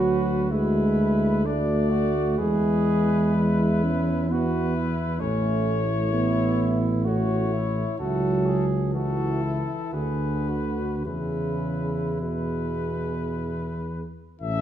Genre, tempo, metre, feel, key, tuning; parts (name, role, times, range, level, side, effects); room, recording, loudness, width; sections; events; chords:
classical, hymn-like piece for brass band; 51-66 BPM; 3/4; rubato; A4 = 440 Hz
warm cornet; melody; 0.0-14.6 s; A4 to E5; -33 LUFS; left 7 dB
mellow flugelhorn; second line; 0.0-14.6 s; C#4 to A4; -32 LUFS; right 5 dB
dark euphonium; accompaniment; 0.0-14.6 s; B2 to C#4; -26 LUFS; right 2 dB
warm euphonium; accompaniment; 0.0-14.6 s; C#4 to G#4; -33 LUFS; left 3 dB
mellow tuba; bass; 0.0-14.6 s; A1 to E2; -26 LUFS; equal
wet recital hall reverb, RT60 1.3 s; minimal, uncompressed stereo recording; -22 LUFS; side -10 dB against mid
0.0-14.4 A section
0.0 Bm/D; 2.4 E; 5.2 A; 8.0 A/C#; 9.9 Bm/D; 11.1 E